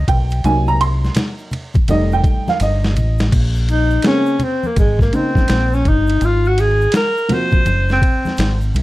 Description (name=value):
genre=hip hop, jazz-hop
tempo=83 BPM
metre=4/4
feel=swing 64% on 16ths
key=Bb dorian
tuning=A4 = 439 Hz
part: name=dark upright piano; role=accompaniment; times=0.0-7.6 s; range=Db3 to C6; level=-19 LUFS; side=right 2 dB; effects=plate reverb
part: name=deep dub fingered electric bass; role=bass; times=0.0-8.8 s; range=F1 to C2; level=-16 LUFS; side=equal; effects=none
part: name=boom bap sampler-style drum kit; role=drums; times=0.1-8.8 s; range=crash cymbal, hi-hat, kick drum, ride cymbal, snare drum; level=-18 LUFS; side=equal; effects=none
part: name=congas and tube shaker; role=percussion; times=0.1-8.8 s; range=none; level=-25 LUFS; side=left 1 dB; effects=none
part: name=breathy tenor saxophone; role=melody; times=3.7-8.6 s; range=Ab3 to C5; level=-17 LUFS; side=left 1 dB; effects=plate reverb
room=light reverb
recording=dark, warm production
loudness=-13 LUFS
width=side -18 dB against mid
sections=0.0-3.3 A section; 3.3-8.8 A section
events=upright piano solo 0.0-3.3; drum fill 2.6-3.3; tenor saxophone solo 3.3-8.8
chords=0.4 Cm7b5; 1.9 F7; 3.3 Bbm9; 6.2 Ab13